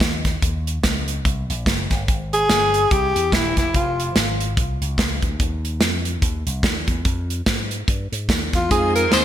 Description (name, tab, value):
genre	uptempo gospel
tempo	145 BPM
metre	4/4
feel	swing 59% on 8ths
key	unclear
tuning	A4 = 440 Hz
part	slap bass with an envelope filter	bass	0.0-9.2 s	Eb1 to Ab2	-25 LUFS	equal	none
part	modern studio drum kit	drums	0.0-9.2 s	hi-hat, kick drum, snare drum	-20 LUFS	equal	gated reverb
part	breathy tenor saxophone	melody	2.3-4.1, 8.6-9.2 s	E4 to C5	-19 LUFS	equal	digital delay
part	mellow tine electric piano	accompaniment	8.7-9.2 s	Ab3 to Ab4	-23 LUFS	left 3 dB	none
part	bright tonewheel organ	sustained chords	8.7-9.2 s	F3 to Ab4	-28 LUFS	right 3 dB	slow rotary speaker, overdrive, chorus vibrato
part	warm studio string section	sustained chords	8.7-9.2 s	Eb5 to C6	-28 LUFS	left 4 dB	none
part	tambourine and handclaps	percussion	8.7-9.2 s	none	-25 LUFS	left 2 dB	none
room	light reverb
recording	bright 1980s-style digital production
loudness	-18 LUFS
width	side -11 dB against mid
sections	0.0-9.2 A section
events	none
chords	0.4 Eb7; 2.1 N.C.; 2.9 C; 3.7 Fm; 5.4 Cmadd11 (rootless); 7.1 Fm7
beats	0.01 | 0.42 0.84 1.25 1.67 | 2.08 2.50 2.91 3.33 | 3.74 4.15 4.57 4.98 | 5.40 5.81 6.22 6.64 | 7.05 7.47 7.88 8.30 | 8.71 9.12